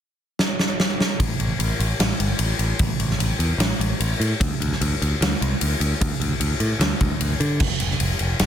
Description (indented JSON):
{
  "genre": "hard rock",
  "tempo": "150 BPM",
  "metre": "4/4",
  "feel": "straight",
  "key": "A minor",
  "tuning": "A4 = 439 Hz",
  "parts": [
    { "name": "huge arena drum kit", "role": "drums", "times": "0.4-8.5 s", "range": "crash cymbal, kick drum, ride cymbal, snare drum", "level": "-22 LUFS", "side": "equal", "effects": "none" },
    { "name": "picked electric bass", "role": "bass", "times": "1.2-8.5 s", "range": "F1 to D3", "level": "-23 LUFS", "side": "equal", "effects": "none" }
  ],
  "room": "little or no reverb",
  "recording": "dense, heavily limited modern master",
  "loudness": "-19 LUFS",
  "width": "side -9 dB against mid",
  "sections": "0.0-1.2 A section; 1.2-8.5 B section",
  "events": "drum fill 0.4-1.2",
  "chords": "none",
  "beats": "0.39 0.79 | 1.20 1.60 2.00 2.40 | 2.80 3.20 3.60 4.00 | 4.40 4.80 5.20 5.60 | 6.00 6.40 6.80 7.20 | 7.60 8.00 8.40"
}